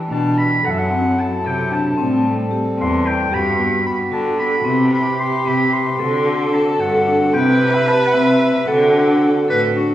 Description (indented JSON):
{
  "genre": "contemporary instrumental, chamber music in an uneven meter",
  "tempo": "224 BPM (eighths)",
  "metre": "5/8",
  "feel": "straight",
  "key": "unclear",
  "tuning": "A4 = 440 Hz",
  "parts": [
    { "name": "clear clarinet", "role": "melody", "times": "0.0-9.9 s", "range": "F#4 to C6", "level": "-20 LUFS", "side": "left 2 dB", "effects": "none" },
    { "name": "hand-pumped harmonium", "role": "sustained chords", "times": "0.0-9.9 s", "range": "C3 to B4", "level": "-24 LUFS", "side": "equal", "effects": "none" },
    { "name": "vibraphone with soft mallets", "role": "arpeggios", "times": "0.1-9.9 s", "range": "B3 to A4", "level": "-20 LUFS", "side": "left 1 dB", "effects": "none" },
    { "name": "bright cello", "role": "bass", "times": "0.1-9.9 s", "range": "E2 to D3", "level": "-22 LUFS", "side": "right 1 dB", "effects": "none" },
    { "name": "dark viola", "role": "second line", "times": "4.7-9.9 s", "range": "G4 to B4", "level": "-20 LUFS", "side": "right 2 dB", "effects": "none" }
  ],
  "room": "wet recital hall reverb, RT60 1.6 s",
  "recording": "heard from further back in the room",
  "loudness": "-14 LUFS",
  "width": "side -12 dB against mid",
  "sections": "0.0-9.9 A section",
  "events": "none",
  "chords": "0.0 Em7; 0.6 F#m7b5; 2.0 Am7; 3.3 Gmaj7; 4.7 Cmaj7; 6.0 D7; 7.3 Cmaj7; 8.7 D7"
}